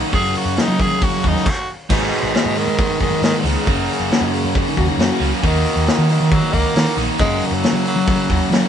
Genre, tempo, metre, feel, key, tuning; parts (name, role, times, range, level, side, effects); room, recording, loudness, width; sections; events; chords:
classic rock; 136 BPM; 4/4; straight; G# minor; A4 = 442 Hz
tonewheel organ; sustained chords; 0.0-8.7 s; F#3 to B4; -34 LUFS; equal
biting overdriven guitar; riff; 0.0-8.7 s; F#2 to D#4; -26 LUFS; equal; spring reverb
overdriven electric guitar; riff; 0.0-8.7 s; F#2 to D#4; -24 LUFS; right 4 dB
sludgy distorted guitar; riff; 0.0-8.7 s; F#2 to G#4; -24 LUFS; left 6 dB; overdrive
raspy tenor saxophone; melody; 0.1-8.5 s; A#2 to G#4; -22 LUFS; right 1 dB
hollow-body short-scale picked electric bass; bass; 0.1-8.6 s; F#1 to F#3; -21 LUFS; equal
vintage drum kit; drums; 0.1-8.6 s; crash cymbal, hi-hat, kick drum, snare drum; -20 LUFS; left 1 dB
clean lap steel guitar; second line; 4.1-5.3 s; D#4 to F#5; -27 LUFS; left 3 dB; digital delay
light reverb; band playing live in one room, nothing above 10.6 kHz; -15 LUFS; side -8 dB against mid
0.0-1.9 A section; 1.9-8.7 B section
tenor saxophone solo 0.0-1.9; stop 1.5-1.9
0.1 F#; 1.9 G#m; 3.7 F#; 5.4 D#m7; 7.2 F#